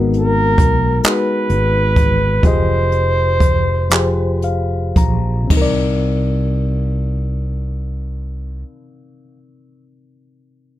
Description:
slow six-eight R&B; 36-45 BPM (dotted quarters); 6/8; straight; C minor; A4 = 440 Hz
reed electric piano; accompaniment; 0.0-10.8 s; C3 to Bb5; -21 LUFS; left 3 dB
fretless electric bass; bass; 0.0-8.6 s; F1 to C2; -18 LUFS; equal
jazz brush drum kit; drums; 0.1-5.8 s; crash cymbal, handclaps, hi-hat, kick drum; -16 LUFS; right 1 dB
breathy flugelhorn; melody; 0.2-4.4 s; Bb4 to C5; -18 LUFS; right 1 dB
little or no reverb; -14 LUFS; side -14 dB against mid
0.0-5.5 A section; 5.5-8.8 B section
slowing down 0.0-5.5; reed electric piano fill 3.9-5.5
0.0 Abm9; 2.4 Fm9; 5.5 Cm9
1.03 | 2.43 3.91 | 5.50 7.17

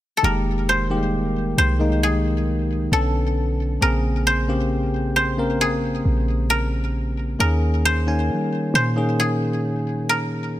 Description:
R&B; 67 BPM; 4/4; straight; F minor; A4 = 440 Hz
koto; melody; 0.2-10.6 s; Ab4 to C5; -24 LUFS; equal; tape echo
bell-like tine electric piano; accompaniment; 0.2-10.6 s; Db3 to Ab5; -23 LUFS; left 1 dB
clean 808-style bass; bass; 0.2-10.6 s; F1 to G3; -23 LUFS; equal
light reverb; -18 LUFS; side -14 dB against mid
0.2-10.6 A section
0.2 Fm11; 2.9 Bm9; 3.8 Bbm9; 7.4 Eb7sus4
| 0.23 1.12 2.02 2.91 | 3.81 4.71 5.60 6.50 | 7.39 8.29 9.18 10.08

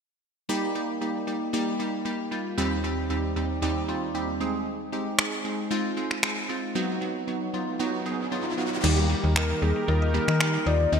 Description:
dance-pop; 115 BPM; 4/4; straight; Eb major; A4 = 443 Hz
glassy wavetable pluck; accompaniment; 0.5-11.0 s; Eb2 to Ab4; -27 LUFS; right 1 dB; chorus
smooth R&B drum kit; drums; 5.2-10.5 s; crash cymbal, finger snaps; -28 LUFS; equal; gated reverb
riser; sound effects; 7.3-8.8 s; -35 LUFS; right 1 dB
filtered supersaw swell; sustained chords; 8.8-11.0 s; Eb3 to Bb4; -34 LUFS; right 1 dB
mallet-like synth pluck; arpeggios; 8.8-11.0 s; Eb3 to Eb5; -34 LUFS; right 4 dB; chorus, ping-pong delay
slap-like FM bass; bass; 8.8-11.0 s; Eb2 to Eb3; -23 LUFS; left 1 dB
hollow clarinet-like synth lead; melody; 9.4-11.0 s; Ab4 to Eb5; -28 LUFS; left 5 dB; chorus
moderate lush hall reverb, RT60 2.0 s; bright 1980s-style digital production; -24 LUFS; side -6 dB against mid
0.5-8.8 A section; 8.8-11.0 B section
riser 7.3-8.8
0.5 Eb; 2.6 Cm/Eb; 4.4 Ab; 6.8 B; 8.8 Eb
| 0.49 1.01 1.53 2.06 | 2.58 3.10 3.62 4.14 | 4.67 5.19 5.71 6.23 | 6.75 7.27 7.80 8.32 | 8.84 9.36 9.88 10.40 | 10.93

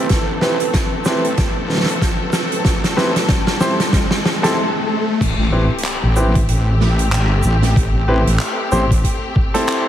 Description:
glitch hop; 94 BPM; 4/4; swing 58% on 16ths; A minor; A4 = 440 Hz
clear studio string section; sustained chords; 0.0-9.9 s; A3 to A4; -24 LUFS; left 2 dB; sidechain pumping, low-pass filter
warm grand piano; stabs; 0.0-9.9 s; C4 to C5; -21 LUFS; equal; vintage 12-bit sampler grit, sidechain pumping, ping-pong delay
wobble bass; bass; 0.0-9.0 s; A1; -18 LUFS; equal; chorus, high-pass filter
riser and impact; sound effects; 0.0-7.8 s; -25 LUFS; equal
deep dark ambient pad; texture; 0.0-4.6 s; C4 to G5; -28 LUFS; right 4 dB; chorus, built-in reverb, sidechain pumping
electronic kick drum; drums; 0.1-9.5 s; -18 LUFS; equal
huge arena drum kit; drums; 0.1-9.8 s; crash cymbal, handclaps, hi-hat, shaker, snare drum; -21 LUFS; right 1 dB
light reverb, studio reverb; vinyl crackle; -14 LUFS; side -11 dB against mid
0.0-5.2 A section; 5.2-9.9 B section
build-up 0.0-5.2; drum fill 0.0-4.6; riser 0.0-5.2; break 4.6-5.2; drop 5.2-9.9; impact 5.2-7.8
0.0 Am9; 5.2 Am7
| 0.10 0.74 1.38 2.02 | 2.65 3.29 3.93 4.57 | 5.21 5.85 6.48 7.12 | 7.76 8.40 9.04 9.68

